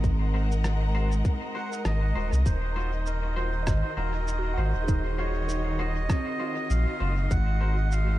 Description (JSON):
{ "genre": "ambient dub", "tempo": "99 BPM", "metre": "4/4", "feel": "swing 57% on 16ths", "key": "Eb dorian", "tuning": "A4 = 441 Hz", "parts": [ { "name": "clear symphonic string section", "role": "sustained chords", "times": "0.0-8.2 s", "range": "Eb3 to Gb5", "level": "-35 LUFS", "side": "equal", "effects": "none" }, { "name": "soft synth bell", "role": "arpeggios", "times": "0.0-8.2 s", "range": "C4 to Bb5", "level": "-38 LUFS", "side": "right 3 dB", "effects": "chorus, phaser, dub echo" }, { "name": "warm sub bass", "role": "bass", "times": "0.0-8.2 s", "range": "Eb1 to C2", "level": "-26 LUFS", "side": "equal", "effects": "none" }, { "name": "electronic kick drum", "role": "drums", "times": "0.0-7.4 s", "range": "none", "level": "-26 LUFS", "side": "equal", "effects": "small room ambience" }, { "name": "electronic shaker and rim click", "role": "drums", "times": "0.0-8.1 s", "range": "none", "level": "-39 LUFS", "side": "equal", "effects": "small room ambience, dub echo" }, { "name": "semi-hollow electric guitar", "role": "stabs", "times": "0.3-7.8 s", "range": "F4 to C5", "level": "-38 LUFS", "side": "left 2 dB", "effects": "lush chorus, dub echo" }, { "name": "melodica", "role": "melody", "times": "1.6-8.2 s", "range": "Bb4 to Gb5", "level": "-34 LUFS", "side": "right 2 dB", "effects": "dub echo" } ], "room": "digital ambience", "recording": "dark, warm production", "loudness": "-24 LUFS", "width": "side -15 dB against mid", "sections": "0.0-2.5 A section; 2.5-8.2 B section", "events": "none", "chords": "0.0 Ab9; 2.5 Ebm69", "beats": "| 0.04 0.64 1.25 1.85 | 2.46 3.07 3.67 4.28 | 4.88 5.49 6.10 6.70 | 7.31 7.91" }